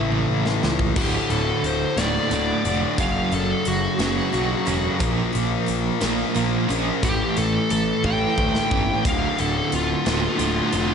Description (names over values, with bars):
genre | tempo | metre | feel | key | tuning
quiet-loud alternative rock | 59 BPM (dotted quarters) | 6/8 | straight | unclear | A4 = 440 Hz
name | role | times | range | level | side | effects
dark smooth lead guitar | melody | 0.0-10.9 s | F4 to G5 | -26 LUFS | equal | overdrive
fuzz guitar | riff | 0.0-10.9 s | D2 to Bb3 | -25 LUFS | left 11 dB | distortion, slapback echo
overdriven semi-hollow guitar | riff | 0.0-10.9 s | D2 to Bb3 | -26 LUFS | right 9 dB | tremolo
fuzz picked electric bass | bass | 0.0-10.9 s | D1 to D2 | -27 LUFS | equal | overdrive
big rock drum kit | drums | 0.1-10.9 s | crash cymbal, hi-hat, kick drum, snare drum, toms | -28 LUFS | equal | none
picked steel-string acoustic guitar | arpeggios | 1.0-9.1 s | D2 to F4 | -32 LUFS | right 4 dB | none
room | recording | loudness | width
moderate lush hall reverb, RT60 2.6 s | big arena sound, nothing above 10.4 kHz | -19 LUFS | side -7 dB against mid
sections
1.0-10.9 A section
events
drum fill 0.0-1.0, 8.0-9.1; lead electric guitar solo 1.0-10.9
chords
0.0 A; 1.0 D5; 3.0 F#m; 5.0 Bbm; 7.0 A; 9.1 Dm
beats
| 0.97 1.98 | 2.99 4.00 | 5.01 6.02 | 7.03 8.04 | 9.05 10.06